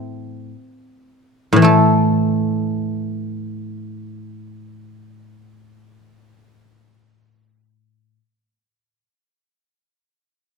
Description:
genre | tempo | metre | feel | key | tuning
chinese traditional, Chinese solo plucked strings | free time | none | none | A yu mode | A4 = 438 Hz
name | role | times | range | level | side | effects
guzheng | solo | 0.0-8.2 s | A2 to A4 | -16 LUFS | equal | none
room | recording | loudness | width
light reverb | close, detailed microphones | -14 LUFS | side -5 dB against mid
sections
0.0-1.7 A section; 1.7-5.8 B section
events
slowing down 0.0-1.7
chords
none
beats
free time

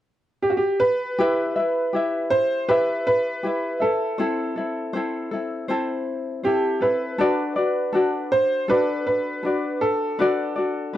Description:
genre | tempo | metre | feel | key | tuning
pop | 80 BPM | 4/4 | straight | E minor | A4 = 442 Hz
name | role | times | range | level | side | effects
clear upright piano | melody | 0.4-11.0 s | F#4 to C5 | -22 LUFS | right 1 dB | none
ukulele | accompaniment | 1.2-11.0 s | C4 to E5 | -24 LUFS | left 2 dB | none
room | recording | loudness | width
small room ambience | dry, close 1970s-style studio recording | -20 LUFS | side -12 dB against mid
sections
0.0-1.2 A section; 1.2-11.0 B section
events
none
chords
0.0 N.C.; 1.2 Em; 4.2 Am; 7.2 D; 10.2 Bm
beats
0.44 | 1.19 1.94 2.69 3.44 | 4.19 4.94 5.69 6.44 | 7.20 7.95 8.70 9.45 | 10.20 10.95

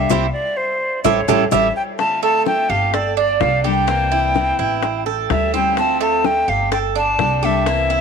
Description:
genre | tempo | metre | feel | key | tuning
latin, Cuban son and guajira | 127 BPM | 4/4 | straight | D minor | A4 = 440 Hz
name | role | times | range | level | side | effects
silver concert flute | melody | 0.0-8.0 s | C5 to A5 | -19 LUFS | left 1 dB | tape echo
picked steel-string acoustic guitar | accompaniment | 0.0-8.0 s | C3 to A4 | -24 LUFS | left 15 dB | none
Cuban tres | arpeggios | 0.0-8.0 s | A3 to A4 | -20 LUFS | right 12 dB | none
upright bass | bass | 0.0-8.0 s | G1 to D2 | -24 LUFS | left 1 dB | none
bongos | percussion | 0.1-8.0 s | none | -23 LUFS | left 13 dB | none
maracas | percussion | 0.1-1.6 s | none | -32 LUFS | left 20 dB | none
room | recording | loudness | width
light reverb, small room ambience | 1960s-style stereo with parts hard left and right | -15 LUFS | side -6 dB against mid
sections
0.0-2.0 A section; 2.0-8.0 A section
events
band accent 0.1-2.0; drum fill 1.5-2.0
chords
0.1 C7; 1.0 A7; 2.0 Dm7; 2.9 Gmadd9; 3.9 C7; 4.8 A7; 5.8 Dm7; 6.7 Gmadd9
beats
| 0.10 0.58 1.05 1.52 | 1.99 2.46 2.94 3.41 | 3.88 4.35 4.83 5.30 | 5.77 6.24 6.72 7.19 | 7.66

